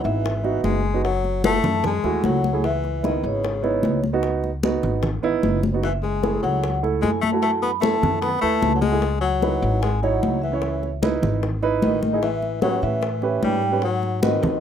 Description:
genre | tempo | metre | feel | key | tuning
Afro-Cuban jazz | 150 BPM | 4/4 | straight | C# minor | A4 = 440 Hz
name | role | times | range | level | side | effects
vibraphone with soft mallets | melody | 0.0-14.6 s | C#5 to B5 | -27 LUFS | equal | none
breathy tenor saxophone | second line | 0.0-14.6 s | C#3 to B3 | -26 LUFS | left 7 dB | none
warm upright piano | accompaniment | 0.0-14.6 s | A3 to C#5 | -25 LUFS | right 6 dB | none
upright bass | bass | 0.0-14.6 s | F#1 to A2 | -26 LUFS | equal | none
congas | percussion | 0.0-14.6 s | none | -26 LUFS | left 1 dB | none
bongos | percussion | 0.1-14.6 s | none | -32 LUFS | left 10 dB | none
room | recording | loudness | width
light reverb | rough home demo mix | -19 LUFS | side -8 dB against mid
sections
0.0-14.6 A section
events
none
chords
0.0 C#m7 (rootless); 1.0 F#m7; 2.6 C#m7; 5.8 F#m7; 9.0 C#m7; 12.2 A7; 13.8 G#7#9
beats
0.24 0.64 | 1.04 1.44 1.84 2.24 | 2.64 3.04 3.44 3.84 | 4.24 4.64 5.04 5.43 | 5.83 6.23 6.63 7.03 | 7.43 7.83 8.23 8.63 | 9.03 9.43 9.83 10.23 | 10.63 11.03 11.43 11.82 | 12.22 12.62 13.02 13.42 | 13.82 14.22

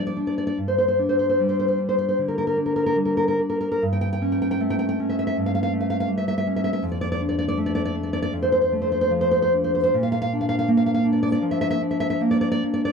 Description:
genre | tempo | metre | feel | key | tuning
romantic piece for solo classical guitar | 66-82 BPM | 4/4 | rubato | D minor | A4 = 436 Hz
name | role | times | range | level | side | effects
nylon-string guitar | solo | 0.0-12.9 s | F2 to G5 | -20 LUFS | equal | none
room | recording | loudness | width
light reverb | dry, close 1970s-style studio recording | -20 LUFS | side -5 dB against mid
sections
0.0-12.9 A section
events
none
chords
0.0 Bb6 (rootless); 0.6 G5; 3.8 A7/G; 6.8 Dm/F; 9.9 Bb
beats
| 0.58 1.38 2.17 2.95 | 3.81 4.60 5.36 6.09 | 6.84 7.58 8.33 9.11 | 9.94 10.69 11.44 12.21

